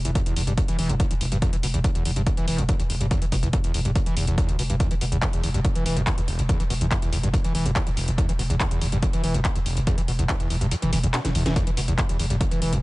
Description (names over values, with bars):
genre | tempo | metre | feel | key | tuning
driving peak-time techno | 142 BPM | 4/4 | straight | E minor | A4 = 438 Hz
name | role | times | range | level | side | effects
screaming distorted acid line | riff | 0.0-12.8 s | E1 to E3 | -27 LUFS | equal | distortion, analog chorus, sidechain pumping
growling 808-style bass | bass | 0.0-12.8 s | E1 | -26 LUFS | equal | overdrive, sidechain pumping, low-pass filter
techno drum kit | drums | 0.0-12.8 s | handclaps, hi-hat, snare drum | -30 LUFS | left 1 dB | sidechain pumping on hats, sidechain pumping on cymbals
electronic kick drum | drums | 0.2-12.5 s | none | -24 LUFS | equal | none
room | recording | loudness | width
little or no reverb | nothing above 10.5 kHz | -21 LUFS | side -21 dB against mid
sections
0.0-12.8 A section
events
kick drops out 10.7-11.6; drum fill 11.1-11.6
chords
none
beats
0.15 0.57 1.00 | 1.42 1.84 2.27 2.69 | 3.11 3.53 3.96 4.38 | 4.80 5.22 5.64 6.07 | 6.49 6.91 7.34 7.76 | 8.18 8.60 9.03 9.45 | 9.87 10.29 10.72 11.14 | 11.56 11.98 12.41